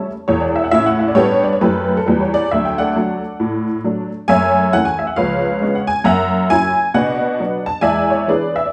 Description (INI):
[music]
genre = jazz, stride piano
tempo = 135 BPM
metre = 4/4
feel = swing 62% on 8ths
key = D major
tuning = A4 = 440 Hz
[part]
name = honky-tonk upright piano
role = solo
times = 0.0-8.7 s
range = E1 to A#5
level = -16 LUFS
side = equal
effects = none
[sound]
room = moderate large studio reverb, RT60 1.1 s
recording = band playing live in one room, nothing above 10.7 kHz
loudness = -16 LUFS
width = mono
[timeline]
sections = 0.0-8.7 A section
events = none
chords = 0.0 A; 0.7 A9; 2.5 D; 4.3 F#m7; 5.2 C#7; 6.1 F#7; 7.0 Bm; 7.8 E7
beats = 0.28 | 0.73 1.17 1.61 2.06 | 2.50 2.95 3.39 3.84 | 4.28 4.73 5.17 5.62 | 6.06 6.51 6.95 7.39 | 7.84 8.28